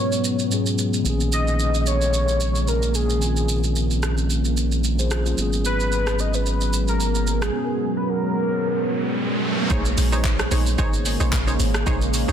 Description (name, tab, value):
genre	amapiano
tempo	111 BPM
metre	4/4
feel	swing 55% on 16ths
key	Bb phrygian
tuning	A4 = 440 Hz
part	warm velvety synth lead	melody	0.0-9.4 s	Ab4 to Eb5	-26 LUFS	equal	chorus, low-pass filter, digital delay
part	mellow tine electric piano	accompaniment	0.0-9.7 s	Ab2 to C5	-27 LUFS	left 3 dB	medium stereo tremolo, low-pass filter
part	deep dark ambient pad	sustained chords	0.0-12.3 s	Db3 to Cb4	-27 LUFS	right 1 dB	chorus, built-in reverb, low-pass filter
part	deep house drum kit	drums	0.1-12.3 s	handclaps, hi-hat, kick drum, rim click, shaker	-27 LUFS	right 1 dB	none
part	round analog bass	bass	1.1-7.5 s	Ab1 to Bb1	-22 LUFS	equal	none
part	riser	sound effects	8.6-9.7 s	none	-29 LUFS	right 2 dB	none
part	analog pluck	stabs	9.7-12.3 s	Eb4 to Db5	-28 LUFS	right 1 dB	chorus, digital delay
part	deep log drum bass	bass	9.7-12.3 s	Ab1 to Bb1	-22 LUFS	equal	none
room	light reverb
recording	dense, heavily limited modern master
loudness	-19 LUFS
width	side -9 dB against mid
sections	0.0-9.7 A section; 9.7-12.3 B section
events	filter sweep 0.0-9.7; riser 8.6-9.7; drop 9.7-12.3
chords	0.0 Abm11; 1.1 Bbm11; 5.4 Abm11; 9.7 Bbm11